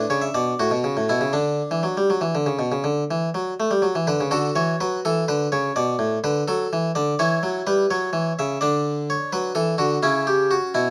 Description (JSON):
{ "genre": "classical, baroque-style suite movement for harpsichord", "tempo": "83 BPM (dotted quarters)", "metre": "12/8", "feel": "rubato", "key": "D major", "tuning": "A4 = 440 Hz", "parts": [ { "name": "harpsichord", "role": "solo", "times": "0.0-10.9 s", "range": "A2 to E5", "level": "-22 LUFS", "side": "equal", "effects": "none" } ], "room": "light reverb", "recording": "close, detailed microphones", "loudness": "-22 LUFS", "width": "mono", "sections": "0.0-4.3 A section; 4.3-10.9 B section", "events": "none", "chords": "0.0 D5; 0.6 A; 1.3 D; 7.2 C#madd11; 8.6 D; 10.0 A (rootless)", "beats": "0.58 | 1.32 2.09 2.84 3.58 | 4.32 5.05 5.77 6.49 | 7.19 7.91 8.62 9.34 | 10.04 10.76" }